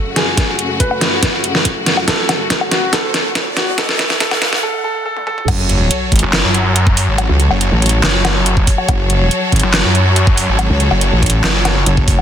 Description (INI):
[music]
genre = heavy wobble dubstep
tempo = 141 BPM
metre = 4/4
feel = half-time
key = F# minor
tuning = A4 = 442 Hz
[part]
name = warm grand piano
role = melody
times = 0.0-5.5 s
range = F#4 to B4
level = -21 LUFS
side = right 1 dB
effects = ping-pong delay
[part]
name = clear studio string section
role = sustained chords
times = 0.0-12.2 s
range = F#2 to C#5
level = -20 LUFS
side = left 2 dB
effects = sidechain pumping
[part]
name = riser and sub drop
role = sound effects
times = 0.9-7.2 s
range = none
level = -27 LUFS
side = right 1 dB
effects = none
[part]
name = dubstep drum kit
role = drums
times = 0.2-12.2 s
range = crash cymbal, handclaps, hi-hat, snare drum, toms, woodblock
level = -16 LUFS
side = equal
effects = none
[part]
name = electronic kick drum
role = drums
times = 0.4-12.2 s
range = none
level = -15 LUFS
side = equal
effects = none
[part]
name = wobble bass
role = bass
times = 5.5-12.2 s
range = F#1 to C#2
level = -14 LUFS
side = equal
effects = chorus, overdrive
[part]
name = snarling distorted saw bass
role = bass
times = 6.2-11.8 s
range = F#1 to F#2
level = -15 LUFS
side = equal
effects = distortion, overdrive
[sound]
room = light reverb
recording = dense, heavily limited modern master, high-pass filter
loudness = -12 LUFS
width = side -9 dB against mid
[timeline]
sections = 0.0-5.5 A section; 5.5-12.2 B section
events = build-up 0.0-5.5; drum fill 0.0-4.6, 5.2-5.5; break 4.6-5.5; drop 5.5-12.2; impact 5.5-7.2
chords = 0.0 F#m